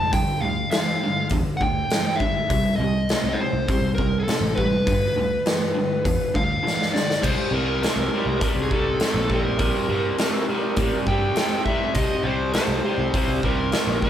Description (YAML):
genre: blues rock power trio and southern rock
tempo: 102 BPM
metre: 4/4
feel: straight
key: C mixolydian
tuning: A4 = 442 Hz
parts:
  - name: dark smooth lead guitar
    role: melody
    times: 0.0-14.1 s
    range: Ab4 to A5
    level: -26 LUFS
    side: equal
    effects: overdrive
  - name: distorted electric guitar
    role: riff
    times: 0.0-14.1 s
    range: G2 to A3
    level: -25 LUFS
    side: equal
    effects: distortion
  - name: picked electric bass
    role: bass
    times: 0.0-14.1 s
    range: F1 to A2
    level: -28 LUFS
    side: equal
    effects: none
  - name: huge arena drum kit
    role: drums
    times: 0.1-14.1 s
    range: crash cymbal, hi-hat, kick drum, snare drum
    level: -24 LUFS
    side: equal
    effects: none
room: moderate large studio reverb, RT60 1.2 s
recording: band playing live in one room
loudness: -20 LUFS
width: side -10 dB against mid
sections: 0.0-7.2 A section; 7.2-14.1 A section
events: drum fill 6.6-7.2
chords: 0.0 G7(no3); 2.5 Cm; 4.9 G7; 7.2 C7(no3)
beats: | 0.13 0.72 1.31 1.91 | 2.50 3.09 3.69 4.28 | 4.87 5.46 6.05 6.65 | 7.24 7.83 8.42 9.01 | 9.60 10.19 10.78 11.37 | 11.96 12.54 13.13 13.72